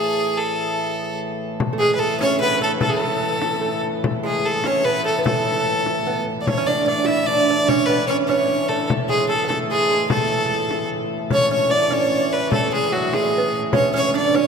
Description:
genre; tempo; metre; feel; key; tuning
medieval dance; 99 BPM (dotted quarters); 6/8; straight; A major; A4 = 440 Hz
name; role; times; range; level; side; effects
clear fiddle; melody; 0.0-14.5 s; F#4 to E5; -20 LUFS; equal; none
pedal harmonium; drone; 0.0-14.5 s; A2 to E3; -28 LUFS; left 1 dB; none
frame drum; percussion; 1.6-14.5 s; none; -27 LUFS; left 3 dB; none
lute; second line; 1.7-14.5 s; F#3 to F#4; -23 LUFS; right 5 dB; none
room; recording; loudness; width
wet cathedral reverb, RT60 5.1 s; none; -18 LUFS; side -6 dB against mid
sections
0.0-1.6 A section; 1.6-11.3 A section; 11.3-14.5 B section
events
none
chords
none

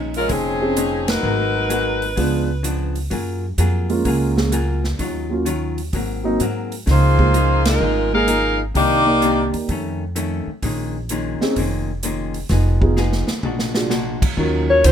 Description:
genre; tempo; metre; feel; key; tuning
jazz, big band swing; 128 BPM; 4/4; swing 68% on 8ths; Bb minor; A4 = 440 Hz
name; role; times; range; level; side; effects
vintage hollow-body jazz guitar; accompaniment; 0.0-14.9 s; F2 to Bb4; -26 LUFS; left 3 dB; none
upright bass; bass; 0.0-14.9 s; F1 to Ab2; -21 LUFS; equal; none
swinging big-band drum kit; drums; 0.1-14.9 s; crash cymbal, hi-hat, kick drum, ride cymbal, snare drum, toms; -25 LUFS; right 1 dB; none
bright saxophone section; melody; 0.2-3.0, 6.9-9.5 s; F3 to F5; -19 LUFS; left 1 dB; none
dark concert grand piano; accompaniment; 0.6-14.9 s; Gb3 to D5; -21 LUFS; right 2 dB; none
breathy alto saxophone; melody; 14.7-14.9 s; C5 to Db5; -12 LUFS; left 2 dB; none
room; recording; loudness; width
light reverb; minimal, uncompressed stereo recording; -17 LUFS; side -9 dB against mid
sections
0.0-14.4 A section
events
band accent 1.0, 7.6; drum fill 13.0-13.9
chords
0.0 Bbm11; 1.2 Abm9; 2.2 Db7b9; 3.1 Gbmaj9; 5.0 Ebm9; 5.9 Ab9; 6.9 Db69; 8.7 Cm9; 9.7 Faug7; 10.6 Bbm11; 12.5 Fm7b5; 13.4 Bb7b13; 14.4 Ebm9

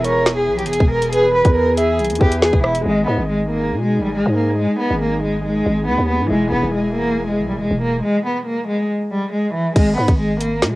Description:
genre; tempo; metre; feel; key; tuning
hip hop, drill; 139 BPM; 4/4; half-time; G# minor; A4 = 440 Hz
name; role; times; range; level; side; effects
warm cello; melody; 0.0-10.8 s; E3 to B4; -18 LUFS; equal; tape echo
breathy flute-like synth lead; second line; 0.0-2.0 s; B4 to E5; -21 LUFS; right 2 dB; chorus, cassette tape, tape echo
clear concert grand piano; accompaniment; 0.0-9.5 s; E3 to D#5; -30 LUFS; left 2 dB; cassette tape
airy breathy pad; sustained chords; 0.0-8.0 s; B2 to G#4; -27 LUFS; equal; chorus, cassette tape
growling 808-style bass; bass; 0.0-10.8 s; E1 to B2; -22 LUFS; equal; none
drill drum kit; drums; 0.0-2.8, 9.8-10.7 s; crash cymbal, hi-hat, kick drum, rim click, snare drum; -16 LUFS; equal; cassette tape
room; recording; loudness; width
light reverb; home recording on cassette; -15 LUFS; side -19 dB against mid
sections
0.0-2.9 A section; 2.9-9.8 B section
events
none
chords
0.0 E; 2.9 G#m; 6.3 E; 9.8 G#m

